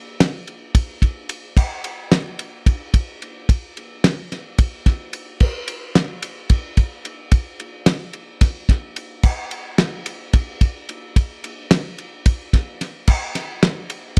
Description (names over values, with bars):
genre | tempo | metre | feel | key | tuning
rock | 219 BPM (eighths) | 7/8 | straight | none | none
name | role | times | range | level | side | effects
damped 70s drum kit | drums | 0.2-14.2 s | crash cymbal, kick drum, ride cymbal, snare drum | -19 LUFS | equal | none
room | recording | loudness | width
light reverb | dry, close 1970s-style studio recording | -20 LUFS | mono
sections
0.0-14.2 A section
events
none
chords
none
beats
0.20 0.48 0.75 1.02 1.30 | 1.57 1.84 2.12 2.39 2.67 2.94 3.21 | 3.49 3.76 4.04 4.31 4.58 4.86 5.13 | 5.41 5.68 5.95 6.23 6.50 6.78 7.05 | 7.33 7.60 7.87 8.15 8.42 8.70 8.97 | 9.25 9.52 9.79 10.07 10.34 10.62 10.89 | 11.17 11.44 11.71 11.99 12.26 12.54 12.81 | 13.08 13.36 13.63 13.90 14.18